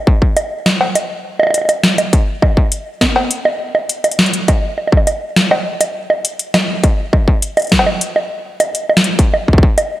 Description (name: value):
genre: IDM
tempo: 102 BPM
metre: 4/4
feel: straight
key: none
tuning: none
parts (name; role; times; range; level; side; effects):
- electronic kick drum; drums; 0.1-9.7 s; none; -12 LUFS; equal; distortion, overdrive
- electro analog drum machine; drums; 0.4-9.9 s; bongos, cowbell, hi-hat, snare drum; -14 LUFS; right 1 dB; none
room: light reverb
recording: dry, gritty hardware recording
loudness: -12 LUFS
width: side -15 dB against mid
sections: 0.0-10.0 A section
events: none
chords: none